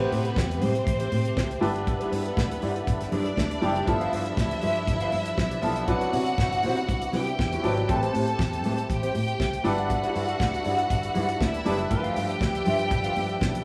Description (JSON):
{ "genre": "disco", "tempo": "120 BPM", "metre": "4/4", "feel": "straight", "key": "G major", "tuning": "A4 = 441 Hz", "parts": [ { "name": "clear studio string section", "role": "second line", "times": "0.0-13.6 s", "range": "B3 to A5", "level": "-32 LUFS", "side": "equal", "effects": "none" }, { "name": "clear baby grand piano", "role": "accompaniment", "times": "0.0-13.6 s", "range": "F3 to B4", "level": "-34 LUFS", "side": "equal", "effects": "none" }, { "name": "mellow electric guitar", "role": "accompaniment", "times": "0.0-13.6 s", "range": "C4 to F5", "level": "-35 LUFS", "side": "equal", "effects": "none" }, { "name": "percussive tonewheel organ", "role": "sustained chords", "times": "0.0-13.6 s", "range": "C3 to E5", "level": "-36 LUFS", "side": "equal", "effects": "overdrive, chorus vibrato, slow rotary speaker" }, { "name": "fingered electric bass", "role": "bass", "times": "0.0-13.6 s", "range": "F#1 to C3", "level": "-33 LUFS", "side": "equal", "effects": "none" }, { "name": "damped 70s drum kit", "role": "drums", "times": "0.0-13.6 s", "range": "hi-hat, kick drum, snare drum", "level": "-33 LUFS", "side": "equal", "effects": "none" }, { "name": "congas", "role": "percussion", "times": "0.4-13.5 s", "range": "none", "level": "-37 LUFS", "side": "equal", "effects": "none" } ], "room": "moderate large studio reverb, RT60 1.0 s", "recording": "band playing live in one room, small room ambience", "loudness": "-26 LUFS", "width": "mono", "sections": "0.0-13.6 A section", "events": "none", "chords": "0.0 Am9; 1.6 G6; 3.9 G13; 5.9 Cmaj9#11; 7.9 Am9; 9.7 G6; 11.9 G13" }